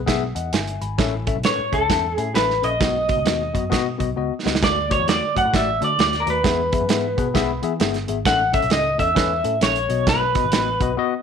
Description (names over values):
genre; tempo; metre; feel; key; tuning
uptempo 1960s-style soul; 132 BPM; 4/4; swing 62% on 8ths; E major; A4 = 441 Hz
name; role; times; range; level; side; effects
vintage muted picked electric bass; bass; 0.0-11.0 s; G1 to E3; -28 LUFS; equal; none
tine electric piano; accompaniment; 0.1-11.1 s; A2 to B5; -25 LUFS; left 11 dB; medium stereo tremolo
natural country drum kit; drums; 0.1-10.9 s; hi-hat, kick drum, snare drum; -22 LUFS; right 4 dB; none
electric guitar through a small old amp; melody; 1.5-10.9 s; A4 to F#5; -20 LUFS; equal; lush chorus
room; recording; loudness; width
moderate plate reverb, RT60 1.1 s, small room reverb; 1960s-style stereo; -18 LUFS; side -7 dB against mid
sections
0.0-4.6 A section; 4.6-11.2 B section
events
drum fill 4.2-4.6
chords
0.0 E; 1.0 A; 2.8 B; 4.6 D; 6.4 E; 8.3 A; 9.8 B